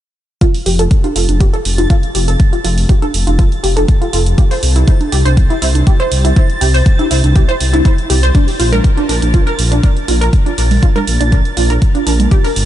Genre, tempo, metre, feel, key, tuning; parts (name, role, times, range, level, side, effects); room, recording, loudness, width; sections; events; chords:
progressive house; 121 BPM; 4/4; straight; F major; A4 = 438 Hz
wide unison pluck; arpeggios; 0.4-12.5 s; D4 to C5; -17 LUFS; equal; lush chorus, sidechain pumping, analog delay
electronic hi-hat; drums; 0.4-12.7 s; -23 LUFS; right 5 dB
electronic kick drum; drums; 0.4-12.4 s; -11 LUFS; equal
backwards swelling texture; texture; 1.3-12.7 s; A6; -26 LUFS; right 2 dB; built-in reverb, sidechain pumping
dark detuned saw bass; bass; 0.7-12.7 s; F1 to C2; -13 LUFS; equal; sidechain pumping
congas; percussion; 1.0-12.3 s; -22 LUFS; right 5 dB; sidechain pumping on perc
light reverb; nothing above 10.6 kHz; -10 LUFS; side -12 dB against mid
0.4-12.7 A section
filter sweep on synth pluck 0.4-12.7
0.4 F; 4.4 C; 8.3 Bb